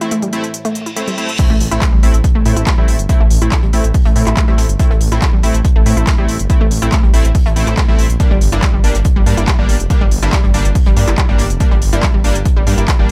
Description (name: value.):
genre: driving peak-time techno.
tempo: 141 BPM.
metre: 4/4.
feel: straight.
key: A phrygian.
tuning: A4 = 440 Hz.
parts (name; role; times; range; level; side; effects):
unison pluck; riff; 0.0-13.0 s; G3 to E4; -25 LUFS; equal; tube saturation, vintage 12-bit sampler grit, sidechain pumping, delay.
sync-sweep polysynth; stabs; 0.0-13.1 s; G3 to E4; -24 LUFS; equal; chorus, sidechain pumping, dub echo.
overtone-sweeping drone; drone; 0.0-1.4 s; A2 to E3; -36 LUFS; equal; chorus, built-in reverb, sidechain pumping.
techno drum kit; drums; 0.0-13.0 s; crash cymbal, handclaps, hi-hat; -25 LUFS; equal; none.
reverse cymbal and impact; sound effects; 0.7-3.1 s; none; -29 LUFS; equal; none.
electronic kick drum; drums; 1.4-13.0 s; none; -15 LUFS; equal; none.
vintage brush drum kit; drums; 1.4-13.1 s; hi-hat, snare drum; -36 LUFS; equal; none.
detuned saw bass; bass; 1.5-13.1 s; F1 to A2; -18 LUFS; equal; sidechain pumping.
room: light reverb, digital ambience.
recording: none.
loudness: -13 LUFS.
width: mono.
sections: 0.0-1.4 A section; 1.4-13.1 B section.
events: reverse cymbal 0.7-1.4; drop 1.4-13.1; impact 1.4-3.1.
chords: 0.0 Am; 8.2 Gm.